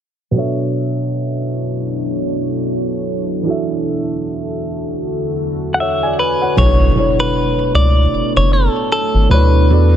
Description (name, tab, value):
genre	R&B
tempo	77 BPM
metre	4/4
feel	swing 58% on 16ths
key	B minor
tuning	A4 = 440 Hz
part	felt-muted upright piano	accompaniment	0.3-10.0 s	B2 to G#5	-19 LUFS	right 1 dB	none
part	deep dark ambient pad	sustained chords	1.3-10.0 s	E2 to C#5	-22 LUFS	equal	chorus, built-in reverb
part	direct-recorded clean electric guitar	melody	5.7-10.0 s	A4 to F#5	-17 LUFS	left 1 dB	tape echo
part	rubbery square bass	bass	6.6-10.0 s	F#1 to E2	-11 LUFS	equal	none
part	impact	sound effects	6.6-9.7 s	none	-22 LUFS	equal	none
room	light reverb, digital ambience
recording	low-pass filter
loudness	-14 LUFS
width	side -10 dB against mid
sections	0.3-6.6 A section; 6.6-10.0 B section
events	filter sweep 0.3-6.6; impact 6.6-9.7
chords	0.3 Bm11; 3.5 E9sus4; 6.6 Bm11